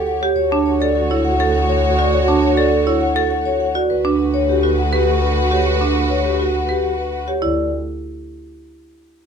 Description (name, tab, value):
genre	classical, minimalist pattern music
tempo	102 BPM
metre	3/4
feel	straight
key	D major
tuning	A4 = 440 Hz
part	vibraphone with medium mallets	melody	0.0-7.7 s	G4 to A5	-20 LUFS	left 7 dB	none
part	clear French horn	second line	0.0-7.2 s	F#4 to G4	-26 LUFS	right 4 dB	none
part	rich symphonic string section	sustained chords	0.0-7.2 s	F#4 to C#5	-25 LUFS	left 1 dB	none
part	rich double bass	bass	0.0-7.7 s	D2	-22 LUFS	right 2 dB	none
part	marimba with medium hard mallets	arpeggios	0.2-7.7 s	D4 to B4	-20 LUFS	right 6 dB	none
room	light reverb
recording	close, detailed microphones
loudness	-15 LUFS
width	side -7 dB against mid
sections	0.0-7.4 A section; 7.4-9.2 B section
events	none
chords	0.4 Dmaj7; 3.9 Gmaj7/D; 7.4 Dsus2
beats	| 0.37 0.96 1.55 | 2.13 2.72 3.31 | 3.90 4.49 5.08 | 5.66 6.25 6.84 | 7.43